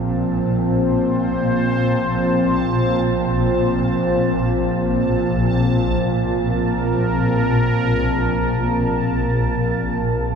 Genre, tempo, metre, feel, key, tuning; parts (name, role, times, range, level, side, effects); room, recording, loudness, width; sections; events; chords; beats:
dark ambient drone; free time; A4 = 443 Hz
sweeping resonant pad; sustained chords; 0.0-10.4 s; Bb2 to C5; -19 LUFS; equal; chorus
swarming drone; drone; 0.0-10.4 s; Bb1 to Bb2; -21 LUFS; left 1 dB; built-in reverb
bubbling stepped-filter texture; texture; 0.0-10.4 s; A5; -31 LUFS; right 3 dB; chorus, built-in reverb
wet huge ambient reverb, RT60 7.8 s; in a vast, echoing space; -17 LUFS; side -6 dB against mid
0.0-10.4 A section
fade-in on synth texture 0.0-10.4
0.0 Bbsus2
free time